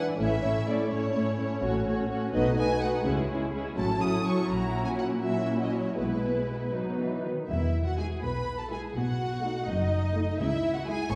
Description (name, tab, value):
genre	quick classical-period movement for string orchestra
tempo	83 BPM (dotted quarters)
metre	6/8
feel	straight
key	E major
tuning	A4 = 439 Hz
part	warm symphonic violin section	melody	0.0-11.2 s	B4 to D#6	-37 LUFS	equal	none
part	rich symphonic violin section	second line	0.0-11.2 s	D#4 to C#5	-35 LUFS	equal	none
part	warm symphonic viola section	accompaniment	0.0-11.1 s	E3 to E4	-33 LUFS	equal	none
part	warm symphonic cello section	bass	0.0-11.2 s	E2 to E3	-36 LUFS	equal	none
part	rich symphonic double bass section	bass	0.2-11.2 s	E1 to C#2	-36 LUFS	equal	none
room	wet scoring stage reverb, RT60 2.1 s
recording	heard from further back in the room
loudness	-28 LUFS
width	mono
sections	0.0-7.5 A section; 7.5-11.2 B section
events	none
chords	0.2 A; 2.3 B7; 3.1 C#m; 3.8 F#m7/A; 4.5 F#7/A#; 6.0 E/B; 6.7 B; 7.5 E; 9.0 B7; 10.4 C#m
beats	| 0.19 0.91 | 1.63 2.35 | 3.06 3.78 | 4.50 5.23 | 5.98 6.74 | 7.50 8.23 | 8.96 9.68 | 10.40 11.12